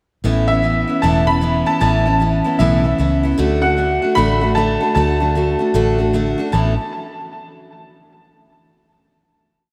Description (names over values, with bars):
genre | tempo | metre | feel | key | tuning
honky-tonk and classic country | 153 BPM | 4/4 | swing 63% on 8ths | A major | A4 = 440 Hz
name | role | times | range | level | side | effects
picked steel-string acoustic guitar | accompaniment | 0.2-6.7 s | A2 to F#4 | -20 LUFS | equal | none
vintage muted fingered electric bass | bass | 0.2-6.8 s | E1 to D2 | -21 LUFS | equal | none
bright upright piano | second line | 0.5-6.8 s | E5 to B5 | -23 LUFS | equal | tape echo
room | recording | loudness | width
wet lush hall reverb, RT60 3.0 s | dreamy mix soaked in reverb | -16 LUFS | mono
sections
0.2-6.5 interlude; 6.5-8.1 final chord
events
upright piano solo 0.2-6.5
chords
0.2 Aadd9; 3.4 D; 6.5 Aadd9